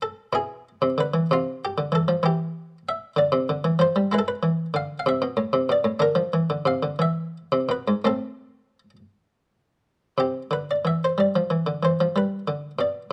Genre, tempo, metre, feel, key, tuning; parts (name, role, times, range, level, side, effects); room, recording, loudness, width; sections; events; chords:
classical, baroque-style suite movement for harpsichord; 55-65 BPM (dotted quarters); 6/8; rubato; A minor; A4 = 440 Hz
buff-stop harpsichord; solo; 0.0-13.1 s; G#2 to F5; -24 LUFS; equal
moderate studio reverb, RT60 0.7 s; -24 LUFS; mono
0.0-10.2 A section; 10.2-13.1 A section
0.3 E7/B; 1.3 Cadd11; 2.2 N.C.; 3.2 Dm; 4.1 E7; 5.1 Am; 6.0 Bb/D; 7.0 E; 8.1 Am; 10.2 C; 12.2 G